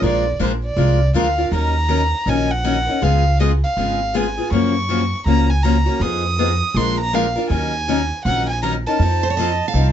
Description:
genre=acoustic string swing (jazz manouche)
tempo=160 BPM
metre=4/4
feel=swing 62% on 8ths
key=Bb minor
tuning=A4 = 440 Hz
part: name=warm violin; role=melody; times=0.0-9.9 s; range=C5 to Eb6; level=-22 LUFS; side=right 2 dB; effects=none
part: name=picked steel-string acoustic guitar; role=accompaniment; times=0.0-9.9 s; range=Db3 to Bb4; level=-21 LUFS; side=left 4 dB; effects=none
part: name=upright bass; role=bass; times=0.0-9.9 s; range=Ab1 to Gb2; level=-19 LUFS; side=right 1 dB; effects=none
part: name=picked steel-string acoustic guitar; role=second line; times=9.2-9.9 s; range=C5 to F5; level=-23 LUFS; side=right 6 dB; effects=none
room=light reverb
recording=nothing above 7.8 kHz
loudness=-16 LUFS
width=side -10 dB against mid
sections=0.0-9.9 A section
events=none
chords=0.0 Bb7; 1.5 Ebm7; 3.0 Db7; 4.5 Gbmaj7; 6.0 Fm7b5; 6.8 Bb7; 7.5 Ebm7; 9.0 F7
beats=| 0.03 0.40 0.78 1.15 | 1.52 1.90 2.27 2.65 | 3.02 3.40 3.77 4.14 | 4.52 4.89 5.26 5.64 | 6.01 6.39 6.76 7.13 | 7.51 7.88 8.26 8.63 | 9.00 9.38 9.75

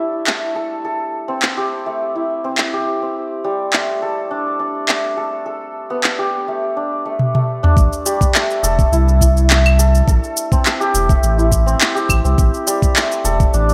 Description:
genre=organic downtempo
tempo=104 BPM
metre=4/4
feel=swing 53% on 16ths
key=A minor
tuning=A4 = 440 Hz
part: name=santur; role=arpeggios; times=0.0-13.7 s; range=G3 to A4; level=-22 LUFS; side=equal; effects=digital delay
part: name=afro-pop drum kit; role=drums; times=0.3-13.7 s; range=claves, handclaps, shaker, toms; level=-20 LUFS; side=equal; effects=none
part: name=warm sub bass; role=bass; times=7.8-13.7 s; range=E1 to C2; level=-17 LUFS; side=equal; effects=none
part: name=electronic kick drum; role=drums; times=7.8-13.5 s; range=none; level=-18 LUFS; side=equal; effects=none
room=moderate plate reverb, RT60 1.6 s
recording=bright 1980s-style digital production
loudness=-17 LUFS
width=mono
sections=0.0-7.8 A section; 7.8-13.7 B section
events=filter sweep on santur 0.0-7.8; drum fill 7.2-7.8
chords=0.0 Am7; 12.4 Gsus2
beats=0.27 | 0.84 1.42 2.00 2.58 | 3.15 3.73 4.31 4.88 | 5.46 6.04 6.61 7.19 | 7.77 8.35 8.92 9.50 | 10.07 10.65 11.23 11.81 | 12.38 12.96 13.54

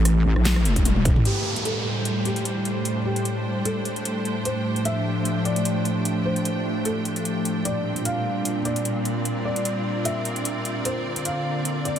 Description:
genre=heavy wobble dubstep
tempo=150 BPM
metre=4/4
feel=swing 54% on 16ths, half-time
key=A phrygian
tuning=A4 = 440 Hz
part: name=evolving wavetable pad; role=sustained chords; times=0.0-12.0 s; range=A2 to C5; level=-26 LUFS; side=equal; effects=chorus, built-in reverb, sidechain pumping
part: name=wobble bass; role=bass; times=0.0-1.2 s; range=E1 to Bb1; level=-19 LUFS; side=equal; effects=chorus, overdrive
part: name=dubstep drum kit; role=drums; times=0.1-12.0 s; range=handclaps, hi-hat, rim click, snare drum, toms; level=-27 LUFS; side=equal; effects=small room ambience
part: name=electronic kick drum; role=drums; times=0.8-1.1 s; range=none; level=-22 LUFS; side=equal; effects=distortion, small room ambience
part: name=felt-muted upright piano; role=melody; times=1.3-12.0 s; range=G4 to F5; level=-30 LUFS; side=left 1 dB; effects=analog delay
part: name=downlifter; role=sound effects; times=1.3-4.5 s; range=none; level=-31 LUFS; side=right 1 dB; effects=none
part: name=bright symphonic string section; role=texture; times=1.3-12.0 s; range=Bb2 to G5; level=-30 LUFS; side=right 2 dB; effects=sidechain pumping
room=moderate huge ambient reverb, RT60 4.1 s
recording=dreamy mix soaked in reverb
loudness=-22 LUFS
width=side -9 dB against mid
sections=0.0-1.3 A section; 1.3-12.0 B section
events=drop 0.0-1.3; drum fill 0.9-1.3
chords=0.0 A5; 1.3 Am7; 4.5 F6/A; 7.7 Gm/Bb; 10.9 Bbadd9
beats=0.05 0.45 0.85 | 1.25 1.65 2.05 2.45 | 2.85 3.25 3.65 4.05 | 4.45 4.85 5.25 5.65 | 6.05 6.45 6.85 7.25 | 7.65 8.05 8.45 8.85 | 9.25 9.65 10.05 10.45 | 10.85 11.25 11.65

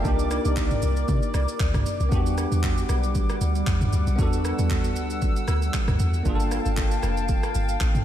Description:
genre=amapiano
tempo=116 BPM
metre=4/4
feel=swing 55% on 16ths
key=E minor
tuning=A4 = 442 Hz
part: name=barky tine electric piano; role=accompaniment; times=0.0-8.0 s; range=Bb3 to Bb4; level=-30 LUFS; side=right 1 dB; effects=ensemble chorus
part: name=hollow soft pad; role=sustained chords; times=0.0-8.0 s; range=G3 to E6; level=-31 LUFS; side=left 2 dB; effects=chorus
part: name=deep log drum bass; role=bass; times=0.0-8.0 s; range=F1 to C3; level=-24 LUFS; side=equal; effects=none
part: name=deep house drum kit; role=drums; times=0.0-8.0 s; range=handclaps, kick drum, rim click, shaker, toms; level=-26 LUFS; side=equal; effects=overdrive
room=light reverb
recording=none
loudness=-21 LUFS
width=side -11 dB against mid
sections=0.0-8.0 A section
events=none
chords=0.0 Cm9; 2.1 Em9; 6.3 Gm9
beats=| 0.05 0.57 1.08 1.60 | 2.12 2.63 3.15 3.67 | 4.19 4.70 5.22 5.74 | 6.26 6.77 7.29 7.81

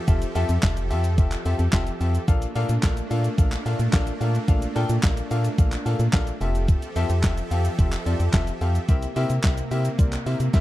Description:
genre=dance-pop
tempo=109 BPM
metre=4/4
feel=straight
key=F major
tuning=A4 = 436 Hz
part: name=supersaw pad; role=sustained chords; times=0.0-10.6 s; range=C3 to E5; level=-32 LUFS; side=right 2 dB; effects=sidechain pumping
part: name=warm concert grand piano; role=accompaniment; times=0.1-10.6 s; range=C4 to C6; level=-30 LUFS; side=left 3 dB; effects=sidechain pumping
part: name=organ-like FM bass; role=bass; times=0.1-10.6 s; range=F1 to C3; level=-23 LUFS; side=equal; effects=sidechain pumping
part: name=crisp 8-bit digital drum machine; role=drums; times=0.1-10.6 s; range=handclaps, hi-hat, kick drum, shaker, snare drum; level=-22 LUFS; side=equal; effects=none
part: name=group handclap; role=percussion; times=2.8-10.6 s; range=none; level=-40 LUFS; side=right 5 dB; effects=none
room=little or no reverb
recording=dark, warm production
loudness=-20 LUFS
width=side -16 dB against mid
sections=0.0-10.6 A section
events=grand piano fill 1.5-2.3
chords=0.0 Fmaj9; 2.3 Bbmaj7; 6.4 Fmaj9; 8.9 C7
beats=| 0.08 0.63 1.18 1.73 | 2.28 2.83 3.38 3.93 | 4.48 5.03 5.58 6.13 | 6.68 7.24 7.79 8.34 | 8.89 9.44 9.99 10.54

